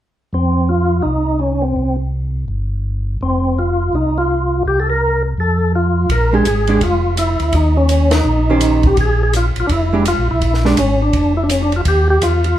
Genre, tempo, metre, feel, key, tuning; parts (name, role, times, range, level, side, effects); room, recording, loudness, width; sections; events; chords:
soul jazz organ trio; 167 BPM; 4/4; swing 63% on 8ths; A4 = 440 Hz
percussive tonewheel organ; melody; 0.3-12.6 s; C4 to Bb4; -16 LUFS; equal; slow rotary speaker, overdrive, chorus vibrato
mellow tonewheel organ; bass; 0.3-12.6 s; F1 to F2; -17 LUFS; equal; chorus vibrato
compact cocktail drum kit; drums; 6.1-12.5 s; hi-hat, kick drum, ride cymbal, snare drum; -22 LUFS; equal
archtop guitar, miked and amplified; accompaniment; 6.3-10.8 s; Eb3 to C5; -18 LUFS; right 3 dB
moderate club reverb, RT60 0.7 s; heard from further back in the room; -13 LUFS; side -12 dB against mid
0.3-6.1 A section; 6.1-12.6 B section
band accent 8.1
0.3 F5; 1.8 C5; 3.2 F5; 4.7 Gmadd11/C; 5.4 F; 6.1 Bb6; 7.5 Eb6; 9.0 Bb; 11.9 Ebadd9